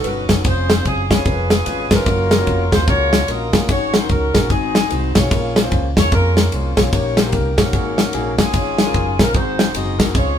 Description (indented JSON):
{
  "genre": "uptempo gospel",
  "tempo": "148 BPM",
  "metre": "4/4",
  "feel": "swing 62% on 8ths",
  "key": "Db major",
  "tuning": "A4 = 441 Hz",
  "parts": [
    { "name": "mellow saxophone section", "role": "melody", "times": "0.0-10.4 s", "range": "Cb4 to Eb5", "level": "-22 LUFS", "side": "equal", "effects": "none" },
    { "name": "dark grand piano", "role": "accompaniment", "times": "0.0-10.4 s", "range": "Ab2 to Db5", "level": "-24 LUFS", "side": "left 5 dB", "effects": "none" },
    { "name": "fingered electric bass", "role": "bass", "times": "0.0-10.4 s", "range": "F1 to F2", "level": "-22 LUFS", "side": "right 1 dB", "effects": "none" },
    { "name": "natural country drum kit", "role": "drums", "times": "0.0-10.3 s", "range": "kick drum, ride cymbal, snare drum", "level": "-16 LUFS", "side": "equal", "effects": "none" }
  ],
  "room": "wet studio reverb, RT60 0.5 s",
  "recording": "band playing live in one room",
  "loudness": "-14 LUFS",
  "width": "side -9 dB against mid",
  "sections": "0.0-10.4 A section",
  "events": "none",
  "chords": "0.4 Dbmaj7/F; 1.3 Db7/F; 2.1 Gbmaj7; 3.7 Ab7sus4; 4.5 Ab7; 5.3 Bbm7; 6.9 Eb7/Bb; 7.7 Ab9sus4; 8.5 Db/Ab; 9.3 Ab7",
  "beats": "0.04 | 0.45 0.85 1.26 1.66 | 2.07 2.47 2.88 3.28 | 3.69 4.09 4.50 4.90 | 5.31 5.71 6.12 6.52 | 6.92 7.33 7.73 8.14 | 8.54 8.95 9.35 9.75 | 10.16"
}